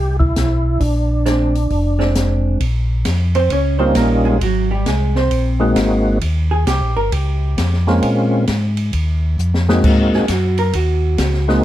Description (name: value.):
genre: soul jazz organ trio.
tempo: 133 BPM.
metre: 4/4.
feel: swing 65% on 8ths.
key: unclear.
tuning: A4 = 442 Hz.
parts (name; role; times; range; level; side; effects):
percussive tonewheel organ; melody; 0.0-11.6 s; G3 to G4; -17 LUFS; equal; slow rotary speaker, overdrive, chorus vibrato.
mellow tonewheel organ; bass; 0.0-11.6 s; F1 to Bb2; -17 LUFS; equal; slow rotary speaker.
open jazz drum kit; drums; 0.2-11.6 s; crash cymbal, hi-hat, kick drum, ride cymbal, snare drum; -22 LUFS; left 1 dB; none.
vintage hollow-body jazz guitar; accompaniment; 1.3-11.4 s; Gb3 to Db5; -20 LUFS; right 3 dB; none.
room: little or no reverb.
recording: dark, warm production, faint mains hum.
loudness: -14 LUFS.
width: side -13 dB against mid.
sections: 0.0-2.6 A section; 2.6-11.6 B section.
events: hollow-body jazz guitar solo 2.6-11.6; drum fill 9.4-9.8.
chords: 0.0 C; 0.8 Bb9; 2.6 Eb9; 4.4 Ab9; 6.2 Eb9; 8.0 Bbm7; 8.9 Ebsus2; 9.8 Ab9.